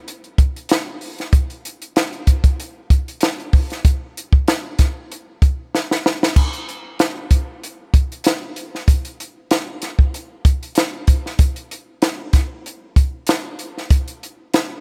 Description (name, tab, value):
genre	soul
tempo	95 BPM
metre	4/4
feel	swing 54% on 16ths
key	none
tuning	none
part	compact cocktail drum kit	drums	0.1-14.7 s	crash cymbal, hi-hat, kick drum, snare drum	-18 LUFS	equal	none
room	little or no reverb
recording	none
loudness	-19 LUFS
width	mono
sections	0.0-3.8 A section; 3.8-6.4 B section; 6.4-14.8 C section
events	drum fill 5.7-6.4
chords	none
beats	0.07 0.70 | 1.33 1.96 2.59 3.22 | 3.85 4.48 5.11 5.74 | 6.36 6.99 7.62 8.25 | 8.88 9.51 10.13 10.76 | 11.39 12.02 12.65 13.28 | 13.91 14.54